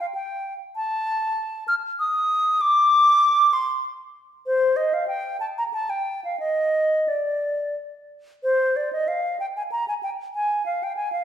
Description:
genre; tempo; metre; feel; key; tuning
classical, baroque-style fantasia for unaccompanied flute; 96 BPM; 3/4; rubato; unclear; A4 = 441 Hz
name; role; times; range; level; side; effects
concert flute; solo; 0.0-11.2 s; C5 to F6; -20 LUFS; equal; none
room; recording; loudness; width
wet recital hall reverb, RT60 1.4 s; heard from further back in the room; -20 LUFS; side -10 dB against mid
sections
0.0-8.4 A section; 8.4-11.2 A section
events
none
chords
none

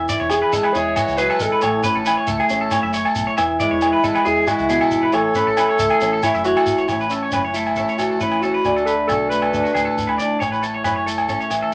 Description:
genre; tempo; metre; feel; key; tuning
highlife guitar band; 137 BPM; 4/4; straight; A major; A4 = 440 Hz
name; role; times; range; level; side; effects
fingerpicked swing-style acoustic guitar; accompaniment; 0.0-11.7 s; A2 to C#5; -25 LUFS; equal; none
electric guitar at the edge of break-up; arpeggios; 0.0-11.7 s; F#4 to E5; -25 LUFS; equal; none
deep dub fingered electric bass; bass; 0.0-11.6 s; E1 to D2; -37 LUFS; equal; none
shekere; percussion; 0.1-11.6 s; none; -33 LUFS; equal; none
dark alto saxophone; melody; 0.3-10.2 s; C#4 to C#5; -24 LUFS; equal; none
agogo bells; percussion; 0.3-11.6 s; none; -25 LUFS; equal; none
room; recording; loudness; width
moderate studio ambience, RT60 0.5 s; none; -19 LUFS; mono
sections
0.0-6.9 A section; 6.9-11.7 B section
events
none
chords
0.0 E; 1.6 A; 3.4 E; 5.1 A; 8.6 D6; 10.4 A

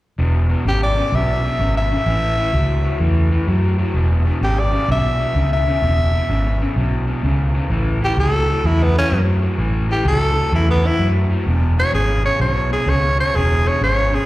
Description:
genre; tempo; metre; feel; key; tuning
electric blues shuffle; 128 BPM; 4/4; swing 66% on 8ths; E major; A4 = 440 Hz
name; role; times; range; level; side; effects
raw garage guitar; riff; 0.2-14.3 s; E2 to F#3; -24 LUFS; left 2 dB; overdrive, slapback echo
vintage muted fingered electric bass; bass; 0.2-14.2 s; E1 to F#2; -17 LUFS; equal; none
growling tenor saxophone; melody; 0.7-14.3 s; B3 to E5; -20 LUFS; equal; slapback echo
room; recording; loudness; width
light reverb; live gig heard through the venue's PA, recital hall reverb; -15 LUFS; side -17 dB against mid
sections
0.2-14.3 A section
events
none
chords
0.2 E; 2.1 A; 3.9 E; 7.7 A; 11.5 E

